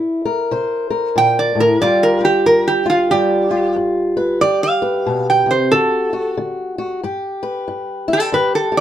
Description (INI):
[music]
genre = acoustic country blues, solo or duo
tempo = 92 BPM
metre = 4/4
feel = swing 61% on 8ths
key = G mixolydian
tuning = A4 = 440 Hz
[part]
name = fingerpicked old ladder-braced acoustic guitar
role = accompaniment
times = 0.0-8.8 s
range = G2 to C5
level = -18 LUFS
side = left 2 dB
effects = none
[part]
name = metal-body resonator slide guitar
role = melody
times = 1.2-8.8 s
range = F4 to G5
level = -15 LUFS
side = right 2 dB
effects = none
[sound]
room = moderate studio reverb, RT60 0.6 s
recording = none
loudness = -14 LUFS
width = side -11 dB against mid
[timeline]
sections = 0.0-7.0 A section; 7.0-8.8 B section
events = resonator guitar played with a steel bar solo 7.0-8.8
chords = 0.0 C7; 1.8 G7; 5.7 D; 7.0 G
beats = 0.52 1.17 | 1.81 2.46 3.12 3.77 | 4.42 5.07 5.72 6.37 | 7.02 7.67 8.32